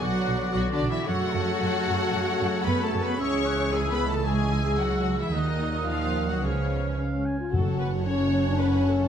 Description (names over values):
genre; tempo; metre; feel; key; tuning
cinematic, heroic adventure film score; 112 BPM; 4/4; straight; unclear; A4 = 440 Hz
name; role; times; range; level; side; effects
clear symphonic violin section; melody; 0.0-9.1 s; C#5 to C#6; -34 LUFS; left 4 dB; none
mellow hollow small flute group; second line; 0.0-7.2 s; A5 to F#6; -36 LUFS; equal; none
rich symphonic violin section; second line; 0.0-9.1 s; C#4 to C#5; -36 LUFS; left 5 dB; none
warm clarinet; second line; 0.0-7.2 s; F#4 to B4; -36 LUFS; left 3 dB; none
warm oboe; second line; 0.0-7.5 s; C#5 to G#5; -38 LUFS; right 1 dB; none
rich symphonic viola section; accompaniment; 0.0-9.1 s; E#3 to C#5; -34 LUFS; equal; none
warm French horn section; sustained chords; 0.0-9.1 s; G#3 to G#4; -30 LUFS; left 3 dB; none
warm trombone section; sustained chords; 0.0-9.1 s; G#2 to C#4; -34 LUFS; right 5 dB; none
rich symphonic double bass section; bass; 0.0-9.1 s; F#1 to F#2; -30 LUFS; right 3 dB; none
warm symphonic cello section; bass; 0.0-9.1 s; F#2 to C#4; -30 LUFS; right 1 dB; none
timpani; percussion; 7.5-8.3 s; F#2; -30 LUFS; left 2 dB; none
room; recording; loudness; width
moderate concert hall reverb, RT60 1.9 s; none; -23 LUFS; side -8 dB against mid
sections
0.0-7.5 A section; 7.5-9.1 B section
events
none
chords
0.0 Bm; 1.1 F#m; 3.2 C#m; 5.3 D#m; 6.4 C#7; 7.5 F#m